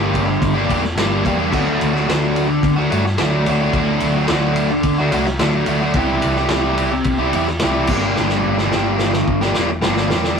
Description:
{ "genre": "indie rock", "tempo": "108 BPM", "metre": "4/4", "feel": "straight", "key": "unclear", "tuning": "A4 = 441 Hz", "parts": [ { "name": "biting overdriven guitar", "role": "riff", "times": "0.0-10.4 s", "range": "G2 to G4", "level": "-17 LUFS", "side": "equal", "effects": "none" }, { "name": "hollow-body short-scale fingered electric bass", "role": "bass", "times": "0.0-10.4 s", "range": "E1 to G2", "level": "-22 LUFS", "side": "equal", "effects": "none" }, { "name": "vintage drum kit", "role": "drums", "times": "0.1-10.4 s", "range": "crash cymbal, kick drum, ride cymbal, snare drum", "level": "-21 LUFS", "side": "equal", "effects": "none" } ], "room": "light reverb", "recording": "rough rehearsal-room recording, tube saturation", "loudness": "-15 LUFS", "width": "side -6 dB against mid", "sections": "0.0-10.4 A section", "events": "drum fill 8.2-10.4", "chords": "0.0 Gm; 1.5 D; 6.0 C; 7.9 Gm" }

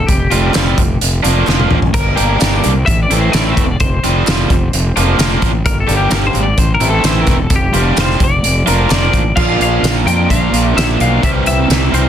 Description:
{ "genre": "indie rock", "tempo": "129 BPM", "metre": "4/4", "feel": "straight", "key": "unclear", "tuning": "A4 = 441 Hz", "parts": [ { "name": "twelve-string electric guitar", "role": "melody", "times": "0.0-12.1 s", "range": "G4 to G5", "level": "-19 LUFS", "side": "left 3 dB", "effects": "none" }, { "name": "fuzz fingered electric bass", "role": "bass", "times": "0.0-12.1 s", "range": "E1 to F2", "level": "-16 LUFS", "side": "equal", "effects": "overdrive" }, { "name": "loose indie drum kit", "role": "drums", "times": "0.1-12.0 s", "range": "crash cymbal, hi-hat, kick drum, snare drum, tambourine, toms", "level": "-16 LUFS", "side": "equal", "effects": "none" }, { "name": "raw garage guitar", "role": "riff", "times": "0.3-12.1 s", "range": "Bb2 to Bb4", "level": "-16 LUFS", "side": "right 2 dB", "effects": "overdrive" }, { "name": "group handclap", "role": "percussion", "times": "0.5-9.0 s", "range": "none", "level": "-31 LUFS", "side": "left 3 dB", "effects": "none" } ], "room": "little or no reverb", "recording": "dense, heavily limited modern master", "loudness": "-11 LUFS", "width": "side -9 dB against mid", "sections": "0.0-9.4 A section; 9.4-12.1 B section", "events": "drum fill 1.5-1.9", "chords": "0.1 Fsus2; 0.8 Bb/F; 1.9 Gm; 2.9 Am; 3.8 Fsus2; 4.5 Bb/F; 5.7 Gm; 6.6 Am; 7.5 Fsus2; 8.2 Bb/F; 9.4 Bb; 11.2 C7" }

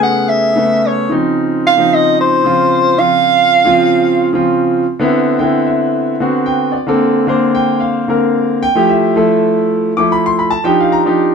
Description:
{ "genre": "jazz", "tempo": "223 BPM (eighths)", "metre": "7/8", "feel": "straight", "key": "unclear", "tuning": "A4 = 440 Hz", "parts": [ { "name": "mellow soprano saxophone", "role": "melody", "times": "0.0-4.3 s", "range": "B#4 to F#5", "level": "-11 LUFS", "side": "right 1 dB", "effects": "none" }, { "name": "clear concert grand piano", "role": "accompaniment", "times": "0.0-11.3 s", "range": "C#3 to D6", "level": "-12 LUFS", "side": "equal", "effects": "none" } ], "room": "moderate studio reverb, RT60 0.8 s", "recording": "band playing live in one room", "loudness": "-10 LUFS", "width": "side -6 dB against mid", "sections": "0.0-4.9 A section; 4.9-11.3 B section", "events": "none", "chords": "0.0 Amaj9; 1.1 C#maj9; 4.9 Cmaj9; 6.7 Bbmaj9; 8.6 Fmaj9; 10.5 Ebmaj9" }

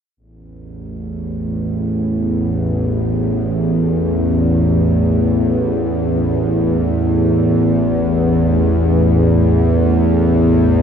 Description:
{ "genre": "ambient", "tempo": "free time", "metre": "none", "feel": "none", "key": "unclear", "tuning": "A4 = 440 Hz", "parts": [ { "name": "bowed-like drone", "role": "solo", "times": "0.8-10.8 s", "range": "A1 to E2", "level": "-14 LUFS", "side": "equal", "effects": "built-in reverb, ping-pong delay" } ], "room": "wet huge ambient reverb, RT60 7.7 s", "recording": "none", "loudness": "-13 LUFS", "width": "side -7 dB against mid", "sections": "0.2-10.8 A section", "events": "none", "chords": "0.2 A5" }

